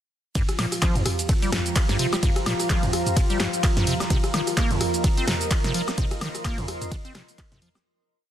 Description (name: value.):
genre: acid house.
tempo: 128 BPM.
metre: 4/4.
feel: swing 57% on 16ths.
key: G minor.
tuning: A4 = 438 Hz.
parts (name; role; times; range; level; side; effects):
warm analog pad; sustained chords; 0.4-7.9 s; F3 to F4; -30 LUFS; equal; chorus, sidechain pumping.
acid bass, square; riff; 0.4-7.8 s; G2 to C4; -29 LUFS; equal; analog chorus, dub echo.
electronic kick drum; drums; 0.4-7.5 s; none; -23 LUFS; equal; overdrive.
punchy analog drum machine; drums; 0.4-7.8 s; handclaps, hi-hat, ride cymbal, rim click, shaker, snare drum, toms, woodblock; -26 LUFS; equal; overdrive.
deep dark ambient pad; texture; 1.0-7.9 s; G4 to C6; -32 LUFS; right 2 dB; chorus, built-in reverb, sidechain pumping.
room: light reverb, digital ambience.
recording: dense, heavily limited modern master.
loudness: -21 LUFS.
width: side -11 dB against mid.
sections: 0.4-7.9 drop.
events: drop 0.4-7.9; fade-out 5.4-7.9.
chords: 0.4 Gm7; 4.1 Cm7.